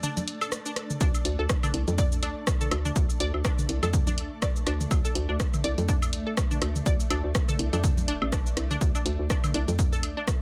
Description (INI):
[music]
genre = minimal techno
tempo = 123 BPM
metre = 4/4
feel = swing 57% on 16ths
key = D minor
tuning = A4 = 440 Hz
[part]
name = resonant blip pluck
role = riff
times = 0.0-10.2 s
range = D4 to D5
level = -37 LUFS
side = equal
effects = analog chorus, cassette tape, sidechain pumping, dub echo
[part]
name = punchy analog drum machine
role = drums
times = 0.0-10.4 s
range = hi-hat, rim click, shaker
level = -36 LUFS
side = equal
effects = none
[part]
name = electronic toms, congas and woodblock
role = percussion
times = 0.0-10.1 s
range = none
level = -35 LUFS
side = equal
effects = none
[part]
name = granular cloud pad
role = texture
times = 0.0-10.4 s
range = A3 to A5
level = -42 LUFS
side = equal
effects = built-in reverb, sidechain pumping
[part]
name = swarming drone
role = texture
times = 0.2-10.4 s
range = A3 to D4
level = -46 LUFS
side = equal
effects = none
[part]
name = hollow knocking FM bass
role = bass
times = 1.0-10.1 s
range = D1 to F2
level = -31 LUFS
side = equal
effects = tube saturation, sidechain pumping
[part]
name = electronic kick drum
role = drums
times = 1.0-10.4 s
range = none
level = -29 LUFS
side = equal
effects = none
[sound]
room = light reverb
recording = none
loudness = -27 LUFS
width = mono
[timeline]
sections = 0.0-10.4 A section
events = break 0.0-1.0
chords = 0.0 D5